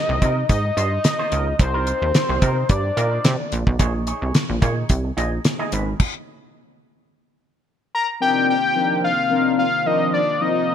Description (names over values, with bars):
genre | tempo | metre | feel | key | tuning
early-eighties boogie funk | 109 BPM | 4/4 | straight | unclear | A4 = 440 Hz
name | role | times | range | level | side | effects
fat analog lead | melody | 0.0-3.5, 7.9-10.7 s | C5 to Bb5 | -21 LUFS | left 2 dB | none
electric guitar with an envelope filter | riff | 0.1-5.9 s | Db4 to Eb5 | -29 LUFS | right 3 dB | lush chorus
plucky analog bass | bass | 0.1-5.9 s | Ab1 to C3 | -22 LUFS | right 1 dB | none
damped 70s drum kit | drums | 0.2-6.1 s | crash cymbal, hi-hat, kick drum, snare drum | -20 LUFS | equal | gated reverb
mellow synth brass | accompaniment | 8.2-10.7 s | F3 to Bb4 | -22 LUFS | left 3 dB | chorus
brassy analog pad | sustained chords | 8.2-10.7 s | C3 to F4 | -29 LUFS | left 1 dB | chorus
room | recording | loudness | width
light reverb | bright 1980s-style digital production | -18 LUFS | side -9 dB against mid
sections
0.0-8.2 A section; 8.2-10.7 B section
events
stop 6.0-8.2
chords
0.0 Cm11; 3.5 Bbm11; 5.7 Abm7; 8.2 Cm11